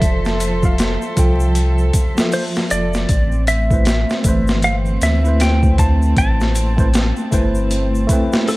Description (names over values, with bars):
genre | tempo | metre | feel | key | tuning
trip hop | 78 BPM | 4/4 | swing 60% on 16ths | A minor | A4 = 442 Hz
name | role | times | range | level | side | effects
clean lap steel guitar | melody | 0.0-8.6 s | A4 to A5 | -24 LUFS | equal | tape echo
bright tine electric piano | accompaniment | 0.0-8.6 s | E3 to G5 | -22 LUFS | equal | medium stereo tremolo, harmonic tremolo, vintage 12-bit sampler grit
dark chamber string section | sustained chords | 0.0-8.6 s | F3 to C5 | -25 LUFS | right 1 dB | none
warm sub bass | bass | 0.0-8.1 s | F1 to D2 | -17 LUFS | equal | none
boom bap sampler-style drum kit | drums | 0.0-8.6 s | hi-hat, kick drum, snare drum | -18 LUFS | equal | overdrive
tube shaker | percussion | 0.0-8.6 s | none | -33 LUFS | left 2 dB | none
room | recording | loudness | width
little or no reverb | vinyl crackle | -14 LUFS | side -20 dB against mid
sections
0.0-8.6 A section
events
none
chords
0.0 Fmaj7; 3.1 Amadd9